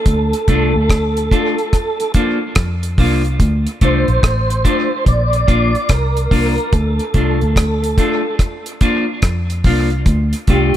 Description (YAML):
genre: roots reggae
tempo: 72 BPM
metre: 4/4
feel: swing 65% on 16ths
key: D minor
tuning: A4 = 440 Hz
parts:
  - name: mellow tonewheel organ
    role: melody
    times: 0.0-10.8 s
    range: G4 to D5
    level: -20 LUFS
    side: right 2 dB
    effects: chorus vibrato, slow rotary speaker, tape echo
  - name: vintage muted fingered electric bass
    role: bass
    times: 0.1-10.7 s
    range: A1 to F2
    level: -17 LUFS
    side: equal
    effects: none
  - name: deep reggae drum kit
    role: drums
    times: 0.1-10.8 s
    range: hi-hat, kick drum, rim click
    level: -16 LUFS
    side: equal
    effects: none
  - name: clean electric guitar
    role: accompaniment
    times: 0.5-10.7 s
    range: A3 to F4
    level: -20 LUFS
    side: left 2 dB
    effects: spring reverb, tape echo
room: little or no reverb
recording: none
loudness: -13 LUFS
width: side -12 dB against mid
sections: 0.0-10.8 A section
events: none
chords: 0.1 Dm; 1.7 Bb; 3.4 Dm; 5.1 Bb; 6.7 Dm; 8.4 Bb; 10.1 Dm